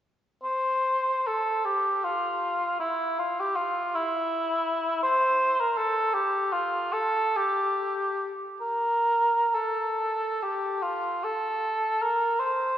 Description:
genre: classical, free, expressive piece for unaccompanied cor anglais.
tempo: 38-57 BPM (dotted quarters).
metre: 6/8.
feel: rubato.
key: F major.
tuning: A4 = 441 Hz.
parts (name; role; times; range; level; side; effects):
dark cor anglais; solo; 0.4-12.8 s; E4 to C5; -24 LUFS; equal; none.
room: wet church reverb, RT60 2.9 s.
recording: recorded in a church or concert hall, nothing above 7.7 kHz.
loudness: -24 LUFS.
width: side -11 dB against mid.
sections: 0.5-12.8 A section.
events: none.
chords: none.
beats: | 0.45 1.66 | 2.81 3.95 | 5.04 6.16 | 7.35 8.62 | 9.98 11.22 | 12.38.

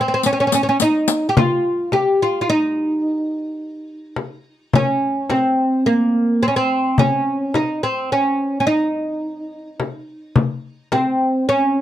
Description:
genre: Turkish makam ensemble.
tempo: 107 BPM (eighths).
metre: 10/8.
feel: straight.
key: C makam kurdi.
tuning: A4 = 441 Hz.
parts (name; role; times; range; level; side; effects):
oud; melody; 0.0-11.8 s; Bb3 to G4; -17 LUFS; equal; none.
riq; percussion; 0.2-1.3 s; none; -20 LUFS; left 7 dB; none.
frame drum; percussion; 1.4-11.2 s; none; -18 LUFS; left 4 dB; none.
room: light reverb.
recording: close, detailed microphones.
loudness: -16 LUFS.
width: side -12 dB against mid.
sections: 0.0-1.4 A section; 1.4-11.8 B section.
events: drum fill 0.2-1.4.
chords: none.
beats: 0.25 0.81 | 1.37 1.93 2.49 3.05 3.61 4.17 4.74 5.30 5.86 6.42 | 6.99 7.55 8.11 8.67 9.23 9.80 10.36 10.92 11.48.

